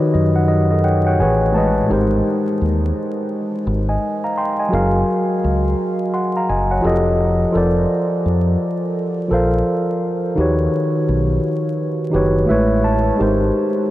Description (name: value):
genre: lo-fi hip hop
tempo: 85 BPM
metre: 4/4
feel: swing 63% on 16ths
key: unclear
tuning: A4 = 440 Hz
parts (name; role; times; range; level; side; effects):
- mellow tine electric piano; accompaniment; 0.0-13.9 s; A2 to C6; -16 LUFS; equal; cassette tape
- deep dub fingered electric bass; bass; 0.1-13.5 s; F1 to F#2; -19 LUFS; equal; none
room: wet huge ambient reverb, RT60 7.8 s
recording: dreamy mix soaked in reverb, vinyl crackle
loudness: -15 LUFS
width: side -15 dB against mid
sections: 0.0-1.9 A section; 1.9-13.9 B section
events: tine electric piano fill 0.0-1.9, 12.1-13.2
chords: 0.0 Eb7alt; 1.2 Amaj9; 1.9 Abmaj9; 4.7 Gbmaj9; 6.8 F9; 7.5 Bbmaj9/F; 10.4 Eb7alt; 12.5 Amaj9; 13.2 Abmaj9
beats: 0.48 1.19 | 1.89 2.60 3.31 4.01 | 4.72 5.42 6.13 6.83 | 7.54 8.25 8.95 9.66 | 10.37 11.07 11.78 12.48 | 13.19 13.89